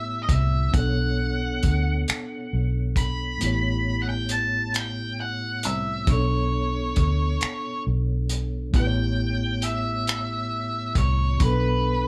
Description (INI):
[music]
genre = slow six-eight R&B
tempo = 45 BPM (dotted quarters)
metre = 6/8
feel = straight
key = B minor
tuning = A4 = 440 Hz
[part]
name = octave-fuzz lead guitar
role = melody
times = 0.0-12.1 s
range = B4 to B5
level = -31 LUFS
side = equal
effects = distortion
[part]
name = mellow tine electric piano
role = accompaniment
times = 0.0-12.1 s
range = A2 to C#5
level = -31 LUFS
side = equal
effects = none
[part]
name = vintage muted fingered electric bass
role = bass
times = 0.0-12.1 s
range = A1 to D2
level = -27 LUFS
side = equal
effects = none
[part]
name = cloth-damped thuddy drum kit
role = drums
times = 0.3-11.6 s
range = finger snaps, hi-hat, kick drum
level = -26 LUFS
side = equal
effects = none
[sound]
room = moderate studio reverb, RT60 0.5 s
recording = band playing live in one room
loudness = -24 LUFS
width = mono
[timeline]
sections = 0.0-12.1 A section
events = kick muted 3.4-6.1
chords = 0.0 A9; 0.7 Bm9; 3.4 A9; 6.1 Bm9; 8.7 A9; 11.4 Bm7